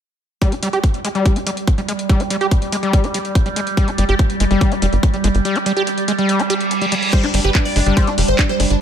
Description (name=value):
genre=psychedelic trance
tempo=143 BPM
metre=4/4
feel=straight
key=unclear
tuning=A4 = 439 Hz
part: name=overtone-sweeping drone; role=sustained chords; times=1.4-8.8 s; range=G3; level=-22 LUFS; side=right 4 dB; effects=chorus, built-in reverb, phaser, sidechain pumping
part: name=screaming distorted acid line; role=riff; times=0.4-8.6 s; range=G3 to G4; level=-21 LUFS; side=left 1 dB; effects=distortion, chorus, auto-pan, sidechain pumping, digital delay
part: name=drum and bass drum kit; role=drums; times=0.4-8.8 s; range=crash cymbal, handclaps, hi-hat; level=-25 LUFS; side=equal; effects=none
part: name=electronic kick drum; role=drums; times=0.4-8.5 s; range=none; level=-17 LUFS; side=equal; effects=none
part: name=tight sequencer bass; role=bass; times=4.0-8.8 s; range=F1 to G1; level=-17 LUFS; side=equal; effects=tube saturation
part: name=reverse cymbal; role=sound effects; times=6.5-7.1 s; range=none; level=-23 LUFS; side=right 2 dB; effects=none
part: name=supersaw stab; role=melody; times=7.1-8.8 s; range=D4 to D5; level=-21 LUFS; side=equal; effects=phaser, sidechain pumping, digital delay
room=light reverb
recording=none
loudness=-15 LUFS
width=side -9 dB against mid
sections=0.4-7.1 A section; 7.1-8.8 B section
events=filter sweep on acid bass 0.4-7.1; kick drops out 5.5-7.1; reverse cymbal 6.5-7.1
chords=none